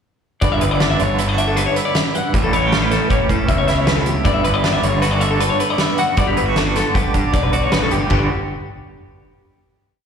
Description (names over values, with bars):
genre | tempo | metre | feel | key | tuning
math rock and midwest emo | 156 BPM | 5/4 | straight | G lydian | A4 = 440 Hz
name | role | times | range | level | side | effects
twangy electric guitar | accompaniment | 0.4-8.3 s | E2 to G4 | -21 LUFS | right 6 dB | tremolo, slapback echo
clean electric guitar | arpeggios | 0.4-8.3 s | G4 to F#5 | -20 LUFS | left 5 dB | slapback echo
fuzz picked electric bass | bass | 0.4-8.3 s | G1 to A2 | -20 LUFS | left 1 dB | overdrive
loose indie drum kit | drums | 0.4-8.2 s | china cymbal, hi-hat, kick drum, snare drum | -21 LUFS | equal | none
room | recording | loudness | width
light reverb, small room ambience | live gig heard through the venue's PA, recital hall reverb | -15 LUFS | side -7 dB against mid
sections
0.4-8.1 A section; 8.1-10.0 final chord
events
none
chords
0.4 G6; 2.3 A7; 4.2 G6; 8.1 Gmaj7